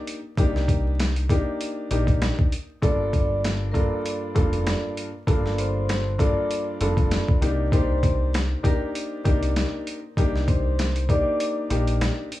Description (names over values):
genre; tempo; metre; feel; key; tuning
hip hop, boom-bap hip-hop; 98 BPM; 4/4; swing 55% on 16ths; unclear; A4 = 440 Hz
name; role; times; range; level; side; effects
warm upright piano; accompaniment; 0.0-12.3 s; G2 to A4; -27 LUFS; left 1 dB; cassette tape, high-pass filter, low-pass filter, plate reverb
boom bap sampler-style drum kit; drums; 0.1-12.4 s; hi-hat, kick drum, snare drum; -24 LUFS; equal; none
deep dub fingered electric bass; bass; 0.4-12.1 s; F1 to C2; -24 LUFS; equal; none
vibraphone with medium hard mallets; melody; 2.8-11.5 s; Bb4 to D6; -30 LUFS; equal; high-pass filter, low-pass filter, plate reverb, tape echo
room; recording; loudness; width
light reverb; vinyl crackle, small room ambience; -21 LUFS; side -15 dB against mid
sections
0.0-12.4 A section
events
break 0.0-2.8, 11.4-12.4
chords
0.0 Cm7; 2.8 Gm7; 7.4 Cm7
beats
| 0.38 0.99 1.60 2.21 | 2.82 3.44 4.05 4.66 | 5.27 5.88 6.50 7.11 | 7.72 8.33 8.95 9.56 | 10.17 10.78 11.39 12.01